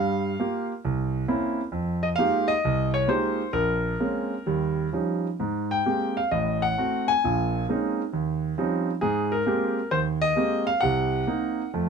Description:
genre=solo jazz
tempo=133 BPM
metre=4/4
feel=swing 68% on 8ths, rubato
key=Ab major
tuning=A4 = 440 Hz
part: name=warm concert grand piano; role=solo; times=0.0-11.9 s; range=A1 to Ab5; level=-23 LUFS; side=right 1 dB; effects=none
room=light reverb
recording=close, detailed microphones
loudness=-23 LUFS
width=side -6 dB against mid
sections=0.0-11.9 A section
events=none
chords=0.0 Gm7; 0.8 C7b9; 1.7 Fm11; 3.5 Bbm9; 4.5 Eb9; 5.4 Abmaj9; 6.3 Adim7; 7.2 Bbm11; 8.1 Eb13; 9.0 Abmaj9; 10.8 Cm7b5

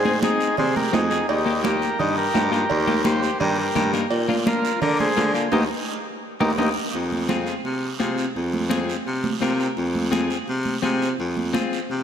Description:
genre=latin, cumbia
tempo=170 BPM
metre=4/4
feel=straight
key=F dorian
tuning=A4 = 439 Hz
part: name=combo organ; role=melody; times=0.0-6.7 s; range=Eb4 to D5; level=-24 LUFS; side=equal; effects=analog delay
part: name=clean electric guitar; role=accompaniment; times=0.0-11.8 s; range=Bb3 to Bb4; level=-27 LUFS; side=left 5 dB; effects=none
part: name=clear baritone saxophone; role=bass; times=0.0-12.0 s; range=Eb2 to D3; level=-24 LUFS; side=equal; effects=none
part: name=congas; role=percussion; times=0.1-12.0 s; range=none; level=-28 LUFS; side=right 4 dB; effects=none
part: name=guiro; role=percussion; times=0.2-12.0 s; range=none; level=-35 LUFS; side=right 7 dB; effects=none
part: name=cowbell and timbales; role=percussion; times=0.6-6.7 s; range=none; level=-31 LUFS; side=right 6 dB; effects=none
room=wet lush hall reverb, RT60 2.9 s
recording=dreamy mix soaked in reverb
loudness=-20 LUFS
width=side -8 dB against mid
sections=0.0-6.9 A section; 6.9-12.0 B section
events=band accent 5.5-6.9; drum fill 6.2-6.9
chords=0.0 Ab; 1.3 Eb; 4.1 Bb; 5.5 Eb; 6.9 Fm

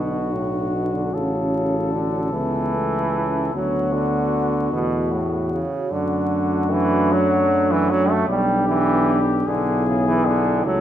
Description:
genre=classical, hymn-like piece for brass band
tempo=50 BPM (dotted quarters)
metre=6/8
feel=rubato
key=D major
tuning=A4 = 441 Hz
part: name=mellow cornet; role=melody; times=0.0-10.8 s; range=F#4 to A4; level=-27 LUFS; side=left 7 dB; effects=none
part: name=dark French horn section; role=second line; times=0.0-10.8 s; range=D4 to F#4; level=-26 LUFS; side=right 4 dB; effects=none
part: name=bright trombone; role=accompaniment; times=0.0-10.8 s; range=A2 to A3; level=-23 LUFS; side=right 2 dB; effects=none
part: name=dark euphonium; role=accompaniment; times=0.0-10.8 s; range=A3 to D4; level=-27 LUFS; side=left 1 dB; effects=none
part: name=mellow tuba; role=bass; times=0.0-10.8 s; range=A1 to F#2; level=-25 LUFS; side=equal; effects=none
room=wet recital hall reverb, RT60 1.8 s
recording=vinyl crackle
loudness=-18 LUFS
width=side -11 dB against mid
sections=0.0-10.8 A section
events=none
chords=0.0 D; 1.1 Aadd9; 3.5 D; 5.9 D/F#; 8.3 G/B; 9.5 E/B

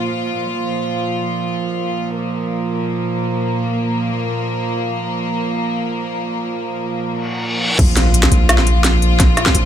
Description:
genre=half-time drum and bass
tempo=free time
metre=none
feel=none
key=unclear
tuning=A4 = 440 Hz
part: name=rich studio string section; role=sustained chords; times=0.0-9.7 s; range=Bb2 to F4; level=-19 LUFS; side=right 1 dB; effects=sidechain pumping
part: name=reverse cymbal and impact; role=sound effects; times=7.2-9.2 s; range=none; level=-22 LUFS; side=left 1 dB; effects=none
part: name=long sustained 808-style bass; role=bass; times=7.8-9.7 s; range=Bb1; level=-14 LUFS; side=equal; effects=tube saturation
part: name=electronic kick drum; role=drums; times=7.8-9.5 s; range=none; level=-14 LUFS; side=equal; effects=overdrive
part: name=organic electronic drum kit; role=drums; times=7.8-9.6 s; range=crash cymbal, hi-hat, snare drum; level=-16 LUFS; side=equal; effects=low-pass filter on snare, low-pass filter on hats, low-pass filter on toms, low-pass filter on cymbals, low-pass filter on room
room=light reverb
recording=none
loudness=-16 LUFS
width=side -10 dB against mid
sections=0.0-7.8 A section; 7.8-9.7 B section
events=reverse cymbal 7.2-7.8; drop 7.8-9.7; impact 7.8-9.2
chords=0.0 Bb5

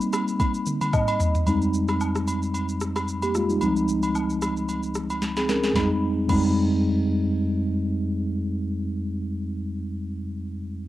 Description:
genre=amapiano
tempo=112 BPM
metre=4/4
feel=swing 55% on 16ths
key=F minor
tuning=A4 = 440 Hz
part: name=mellow tine electric piano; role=accompaniment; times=0.0-10.9 s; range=Db2 to Eb5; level=-23 LUFS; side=equal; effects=medium stereo tremolo, low-pass filter, cassette tape
part: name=smooth R&B drum kit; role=drums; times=0.0-6.5 s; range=crash cymbal, kick drum, rim click, shaker, snare drum, toms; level=-28 LUFS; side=equal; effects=overdrive, cassette tape
part: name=agogo bells and woodblock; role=percussion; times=0.1-6.5 s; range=none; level=-31 LUFS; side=left 1 dB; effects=none
room=little or no reverb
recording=home recording on cassette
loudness=-22 LUFS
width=side -15 dB against mid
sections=0.0-1.5 A section; 1.5-5.8 B section; 5.8-10.0 C section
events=drum fill 0.4-1.5, 5.2-5.8; tine electric piano fill 0.7-1.5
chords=0.0 Cm7; 1.5 Fm9; 3.6 Dbmaj9; 5.8 Fm9

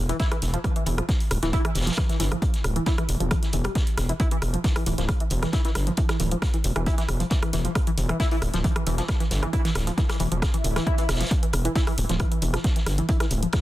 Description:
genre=driving peak-time techno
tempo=135 BPM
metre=4/4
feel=straight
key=unclear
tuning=A4 = 440 Hz
part: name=gritty driven synth bass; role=bass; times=0.0-13.5 s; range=D1 to G1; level=-26 LUFS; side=equal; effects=sidechain pumping
part: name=tight sequenced synth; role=riff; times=0.1-13.6 s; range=E3 to E4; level=-29 LUFS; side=equal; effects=chorus, sidechain pumping, digital delay
part: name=punchy analog drum machine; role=drums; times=0.1-13.6 s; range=hi-hat, rim click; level=-32 LUFS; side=equal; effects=soft clipping on snare
part: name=vintage drum kit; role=drums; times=0.1-13.6 s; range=hi-hat, snare drum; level=-36 LUFS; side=equal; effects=sidechain pumping on hats, high-pass filter on hats, high-pass filter on snare, high-pass filter on room
part: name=electronic kick drum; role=drums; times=0.2-13.6 s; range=none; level=-24 LUFS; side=equal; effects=none
part: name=swell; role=sound effects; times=10.6-11.3 s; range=none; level=-36 LUFS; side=equal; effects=none
room=digital ambience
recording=dense, heavily limited modern master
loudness=-22 LUFS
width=side -15 dB against mid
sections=0.0-13.6 A section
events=swell 10.6-11.3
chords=0.0 Dsus2

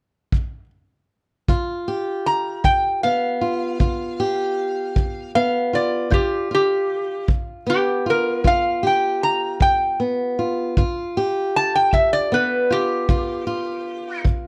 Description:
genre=acoustic country blues, solo or duo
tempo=52 BPM (dotted quarters)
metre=12/8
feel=straight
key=G mixolydian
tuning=A4 = 440 Hz
part: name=kick drum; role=drums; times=0.3-14.4 s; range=none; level=-22 LUFS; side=equal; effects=none
part: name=fingerpicked swing-style acoustic guitar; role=accompaniment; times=1.5-14.5 s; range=G2 to G4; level=-26 LUFS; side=equal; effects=none
part: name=metal-body resonator slide guitar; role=melody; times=2.3-14.2 s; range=G4 to Bb5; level=-22 LUFS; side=equal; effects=none
room=light reverb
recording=none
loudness=-21 LUFS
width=mono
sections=0.0-1.5 A section; 1.5-14.5 B section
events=none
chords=0.0 N.C.; 1.5 G7

